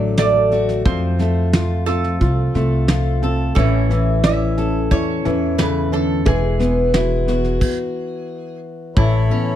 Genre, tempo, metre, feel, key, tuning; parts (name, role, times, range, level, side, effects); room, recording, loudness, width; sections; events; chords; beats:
acoustic folk duo or small band; 89 BPM; 4/4; straight; A major; A4 = 441 Hz
lap resonator guitar; second line; 0.0-9.6 s; E4 to E5; -24 LUFS; right 5 dB
fingerpicked steel-string acoustic guitar; accompaniment; 0.0-9.6 s; A2 to A4; -21 LUFS; left 3 dB
felt-muted upright piano; arpeggios; 0.0-9.6 s; E3 to A4; -24 LUFS; right 1 dB
upright bass; bass; 0.0-9.3 s; E1 to F2; -20 LUFS; equal
soft brush drum kit; drums; 0.2-9.1 s; crash cymbal, kick drum, snare drum; -20 LUFS; right 1 dB
pedal harmonium; sustained chords; 9.0-9.6 s; A4 to B5; -25 LUFS; equal
light reverb; -15 LUFS; side -11 dB against mid
0.0-9.0 A section
resonator guitar played with a steel bar solo 0.0-9.0; stop 7.6-9.0
0.0 D; 0.8 F; 3.6 A; 6.3 Eadd9; 9.0 Aadd9
0.17 | 0.85 1.53 2.20 2.88 | 3.56 4.23 4.91 5.58 | 6.26 6.94 7.61 8.29 | 8.96